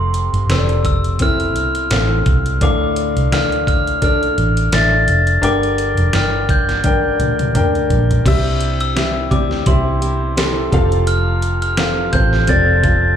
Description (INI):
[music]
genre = piano-driven pop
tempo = 85 BPM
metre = 4/4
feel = swing 56% on 16ths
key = C mixolydian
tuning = A4 = 440 Hz
[part]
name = glockenspiel with soft plastic mallets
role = melody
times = 0.0-13.2 s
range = C6 to A6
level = -20 LUFS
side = equal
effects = slapback echo, ping-pong delay
[part]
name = clear upright piano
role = accompaniment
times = 0.0-13.2 s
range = G2 to G5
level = -20 LUFS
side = left 2 dB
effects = slapback echo
[part]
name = vintage muted fingered electric bass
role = bass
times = 0.0-13.2 s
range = F1 to D2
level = -18 LUFS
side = equal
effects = none
[part]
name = pop drum kit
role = drums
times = 0.1-13.0 s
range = crash cymbal, hi-hat, kick drum, snare drum, toms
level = -19 LUFS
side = equal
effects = none
[part]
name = fingerpicked steel-string acoustic guitar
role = riff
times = 8.3-13.2 s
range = C3 to A4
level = -25 LUFS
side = right 5 dB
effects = slapback echo
[sound]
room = digital ambience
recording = live gig heard through the venue's PA, club reverb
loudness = -13 LUFS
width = side -9 dB against mid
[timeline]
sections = 0.0-8.3 A section; 8.3-13.2 B section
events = drum fill 6.8-8.3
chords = 0.0 F; 2.6 Dm; 5.4 Gm; 8.3 C; 10.7 F